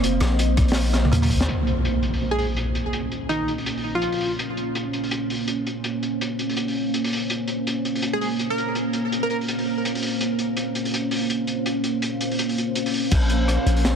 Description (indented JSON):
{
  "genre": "half-time drum and bass",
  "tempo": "165 BPM",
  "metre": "4/4",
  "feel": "swing 59% on 16ths, half-time",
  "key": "Bb minor",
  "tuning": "A4 = 440 Hz",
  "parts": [
    { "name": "deep dark ambient pad", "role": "sustained chords", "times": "0.0-14.0 s", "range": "Bb3 to F5", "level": "-25 LUFS", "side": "right 1 dB", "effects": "chorus, built-in reverb, sidechain pumping" },
    { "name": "kalimba", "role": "arpeggios", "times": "0.0-1.5 s", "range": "Bb3 to C4", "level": "-31 LUFS", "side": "right 5 dB", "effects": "digital delay" },
    { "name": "long sustained 808-style bass", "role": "bass", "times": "0.0-1.5, 13.1-14.0 s", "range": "F1 to Eb2", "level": "-21 LUFS", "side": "left 1 dB", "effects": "none" },
    { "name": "crunchy breakbeat drum kit", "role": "drums", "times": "0.0-13.9 s", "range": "crash cymbal, hi-hat, rim click, snare drum, toms", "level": "-28 LUFS", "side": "left 1 dB", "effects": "low-pass filter on hats, low-pass filter on toms, low-pass filter on cymbals, low-pass filter on snare, low-pass filter on room" },
    { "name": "electronic kick drum", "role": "drums", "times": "0.6-1.4, 13.1-13.2 s", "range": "none", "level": "-22 LUFS", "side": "equal", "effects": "overdrive" },
    { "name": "impact", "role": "sound effects", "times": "1.5-2.9 s", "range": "none", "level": "-26 LUFS", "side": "left 1 dB", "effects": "none" },
    { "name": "plucky unison lead", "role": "melody", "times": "2.3-4.3, 8.1-9.4 s", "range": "Eb4 to Bb4", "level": "-27 LUFS", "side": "equal", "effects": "digital delay" }
  ],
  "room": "light reverb, studio reverb",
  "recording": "heavily compressed radio sound",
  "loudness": "-21 LUFS",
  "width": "side -7 dB against mid",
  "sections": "0.0-1.5 A section; 1.5-13.1 B section",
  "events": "drop 0.0-1.5; drum fill 0.9-1.5; impact 1.5-2.9",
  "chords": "0.0 Bbsus2; 1.5 Bbmadd9",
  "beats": "| 0.03 0.39 0.75 1.12 | 1.48 1.84 2.21 2.57 | 2.94 3.30 3.66 4.03 | 4.39 4.75 5.12 5.48 | 5.84 6.21 6.57 6.94 | 7.30 7.66 8.03 8.39 | 8.75 9.12 9.48 9.85 | 10.21 10.57 10.94 11.30 | 11.66 12.03 12.39 12.75 | 13.12 13.48 13.85"
}